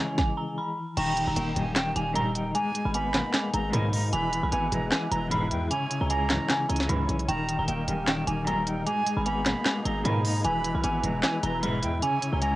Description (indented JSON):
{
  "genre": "hip hop, trap",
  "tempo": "152 BPM",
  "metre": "4/4",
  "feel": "half-time",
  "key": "G# harmonic minor",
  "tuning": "A4 = 440 Hz",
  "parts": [
    { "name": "dark detuned synth bell", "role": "melody", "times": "0.0-12.6 s", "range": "G5 to B5", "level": "-30 LUFS", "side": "right 1 dB", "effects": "chorus, phaser" },
    { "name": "semi-hollow electric guitar", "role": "accompaniment", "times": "0.0-12.6 s", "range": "C#3 to E4", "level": "-31 LUFS", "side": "left 2 dB", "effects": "tremolo, cassette tape" },
    { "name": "musette accordion", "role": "sustained chords", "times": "0.0-12.6 s", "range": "B2 to C#5", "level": "-39 LUFS", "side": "right 1 dB", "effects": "cassette tape" },
    { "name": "trap drum kit", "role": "drums", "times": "0.2-12.5 s", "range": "crash cymbal, handclaps, hi-hat, kick drum, snare drum", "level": "-28 LUFS", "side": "equal", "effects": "cassette tape" },
    { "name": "jazz flute", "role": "second line", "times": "1.0-12.6 s", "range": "G5 to B5", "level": "-36 LUFS", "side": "right 3 dB", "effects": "cassette tape, analog delay" },
    { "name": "hard-hitting 808-style bass", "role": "bass", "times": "1.0-12.6 s", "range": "D#1 to G#2", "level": "-30 LUFS", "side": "equal", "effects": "none" },
    { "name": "warm studio string section", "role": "stabs", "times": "1.6-11.9 s", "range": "A#1 to E3", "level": "-34 LUFS", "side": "right 1 dB", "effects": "cassette tape" }
  ],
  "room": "light reverb",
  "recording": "home recording on cassette",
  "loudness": "-24 LUFS",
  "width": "side -17 dB against mid",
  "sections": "1.0-12.6 A section",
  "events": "stop 0.2-1.0",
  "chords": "0.0 C#m; 1.0 D#; 2.5 G#madd9; 4.1 E; 5.7 C#m; 7.3 D#; 8.9 G#madd9; 10.4 E; 12.0 C#m"
}